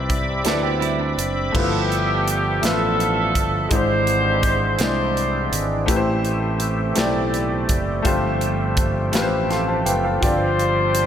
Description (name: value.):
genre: slow gospel.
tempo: 55 BPM (dotted quarters).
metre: 6/8.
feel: straight.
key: unclear.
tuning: A4 = 441 Hz.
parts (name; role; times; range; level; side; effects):
clear grand piano; accompaniment; 0.0-11.1 s; G2 to C6; -23 LUFS; left 2 dB; none.
bright tonewheel organ; sustained chords; 0.0-11.1 s; E3 to D6; -26 LUFS; right 4 dB; fast rotary speaker, overdrive, chorus vibrato.
fingered electric bass; bass; 0.0-11.1 s; F#1 to D2; -25 LUFS; equal; none.
modern studio drum kit; drums; 0.1-11.1 s; crash cymbal, hi-hat, kick drum, snare drum; -25 LUFS; right 1 dB; none.
clean electric guitar; second line; 0.5-1.5 s; G3 to A4; -28 LUFS; right 8 dB; lush chorus.
mellow horn section; melody; 1.6-5.9, 10.2-11.1 s; B3 to C5; -22 LUFS; left 1 dB; none.
room: moderate concert hall reverb, RT60 2.1 s.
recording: none.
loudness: -18 LUFS.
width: side -9 dB against mid.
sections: 0.0-1.5 A section; 1.5-11.1 B section.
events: grand piano fill 9.1-10.2.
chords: 0.0 Cmaj9; 1.5 G13; 3.7 E7alt/G#; 5.9 Am7; 8.1 G9sus4; 10.2 G7sus4.